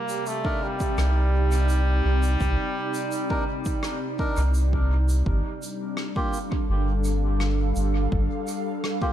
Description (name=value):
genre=ambient dub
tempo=84 BPM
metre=4/4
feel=straight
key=G minor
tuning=A4 = 441 Hz
part: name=brilliant trombone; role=melody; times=0.0-4.5 s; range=G3 to Bb3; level=-31 LUFS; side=equal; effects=dub echo
part: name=airy breathy pad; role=sustained chords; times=0.0-9.1 s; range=C3 to F5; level=-29 LUFS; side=equal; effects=chorus
part: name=shaker and rim click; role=drums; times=0.1-9.0 s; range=none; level=-38 LUFS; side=equal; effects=dub echo
part: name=melodica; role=stabs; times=0.4-9.1 s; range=Bb3 to Bb4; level=-34 LUFS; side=equal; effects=dub echo
part: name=electronic kick drum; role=drums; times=0.4-9.1 s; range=none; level=-28 LUFS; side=equal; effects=overdrive
part: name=soft dub sub bass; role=bass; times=1.0-8.3 s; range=G1 to C2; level=-21 LUFS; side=equal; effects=none
room=light reverb, small room ambience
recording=none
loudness=-22 LUFS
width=side -11 dB against mid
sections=0.0-5.3 A section; 5.3-9.1 A section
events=none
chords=0.0 Cmadd9; 5.3 G7(no3)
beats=0.26 0.98 1.69 | 2.40 3.12 3.83 4.55 | 5.26 5.98 6.69 7.41 | 8.12 8.83